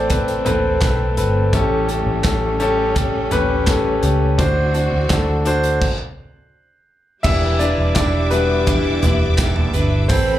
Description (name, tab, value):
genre	piano-driven pop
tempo	84 BPM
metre	4/4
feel	straight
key	E minor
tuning	A4 = 440 Hz
part	warm concert grand piano	accompaniment	0.0-10.4 s	A2 to E5	-19 LUFS	left 2 dB	plate reverb, slapback echo
part	clear studio string section	sustained chords	0.0-10.4 s	D3 to D6	-27 LUFS	left 1 dB	plate reverb
part	vintage muted fingered electric bass	bass	0.0-10.4 s	E1 to D2	-20 LUFS	equal	none
part	modern studio drum kit	drums	0.1-10.3 s	crash cymbal, handclaps, hi-hat, kick drum, snare drum, toms	-22 LUFS	right 1 dB	none
part	tambourine	percussion	2.2-9.6 s	none	-34 LUFS	left 2 dB	none
part	picked steel-string acoustic guitar	riff	7.2-10.4 s	A2 to B4	-24 LUFS	right 5 dB	none
room	light reverb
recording	live gig heard through the venue's PA, club ambience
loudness	-15 LUFS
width	side -13 dB against mid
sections	0.0-7.2 A section; 7.2-10.4 B section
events	stop 5.8-7.2; grand piano solo 7.2-10.4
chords	0.0 Amadd9; 1.5 A7; 4.4 D7; 7.2 Em7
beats	0.10 0.82 | 1.53 2.25 2.96 3.67 | 4.39 5.10 5.82 6.53 | 7.24 7.96 8.67 9.39 | 10.10